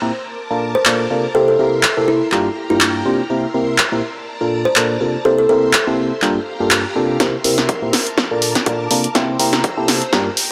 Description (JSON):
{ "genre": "piano house", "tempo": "123 BPM", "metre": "4/4", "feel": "swing 55% on 16ths", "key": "C mixolydian", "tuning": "A4 = 439 Hz", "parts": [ { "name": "string machine, violins", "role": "sustained chords", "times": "0.0-10.5 s", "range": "G4 to F6", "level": "-29 LUFS", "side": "equal", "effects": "ensemble chorus, sidechain pumping" }, { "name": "barking FM electric piano", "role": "riff", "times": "0.0-10.3 s", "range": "G2 to C5", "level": "-20 LUFS", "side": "equal", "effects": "chorus, phaser, vintage 12-bit sampler grit, sidechain pumping, low-pass filter" }, { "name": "kalimba", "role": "melody", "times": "0.8-6.2 s", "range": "E4 to C5", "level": "-21 LUFS", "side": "equal", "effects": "tape echo" }, { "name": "punchy analog drum machine", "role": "drums", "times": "0.9-10.5 s", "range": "handclaps, hi-hat, snare drum", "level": "-19 LUFS", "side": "equal", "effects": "high-pass filter on snare, high-pass filter on hats, high-pass filter on room" }, { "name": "electronic kick drum", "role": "drums", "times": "7.2-10.2 s", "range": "none", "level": "-25 LUFS", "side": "equal", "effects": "overdrive, high-pass filter on kick, high-pass filter on room" } ], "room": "light reverb", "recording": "dry, gritty hardware recording", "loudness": "-16 LUFS", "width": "mono", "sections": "0.0-7.2 A section; 7.2-10.5 B section", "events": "build-up 7.2-10.5; drum fill 7.2-10.5; filter sweep on FM electric piano 7.2-10.5", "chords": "0.1 Bbmaj7; 1.3 C7; 2.3 Gm7; 3.3 C7; 4.0 Bbmaj7; 5.2 C7; 6.2 Gm7; 7.2 C7; 7.9 Bbmaj7; 9.2 C7" }